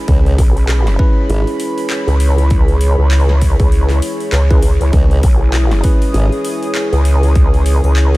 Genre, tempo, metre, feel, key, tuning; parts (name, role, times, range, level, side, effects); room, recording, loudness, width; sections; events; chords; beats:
glitch hop; 99 BPM; 4/4; swing 60% on 16ths; C# minor; A4 = 440 Hz
dark analog pad; sustained chords; 0.0-8.2 s; E4 to D#6; -22 LUFS; left 1 dB; chorus, sidechain pumping
tine electric piano; stabs; 0.0-8.2 s; C#4 to D#5; -24 LUFS; equal; sidechain pumping, tape echo
formant-sweep wobble bass; bass; 0.1-6.3 s; G#1 to C#2; -13 LUFS; equal; chorus, tube saturation
dubstep drum kit; drums; 0.1-8.2 s; handclaps, hi-hat, snare drum; -26 LUFS; left 1 dB; overdrive
electronic kick drum; drums; 0.1-7.5 s; -12 LUFS; equal; overdrive
vowel-sweep wobble bass; bass; 0.4-8.2 s; B1 to C#2; -12 LUFS; equal; chorus
little or no reverb; -10 LUFS; side -19 dB against mid
0.0-8.2 A section
0.0 C#m7
| 0.08 0.69 1.30 1.90 | 2.51 3.11 3.72 4.33 | 4.93 5.54 6.14 6.75 | 7.36 7.96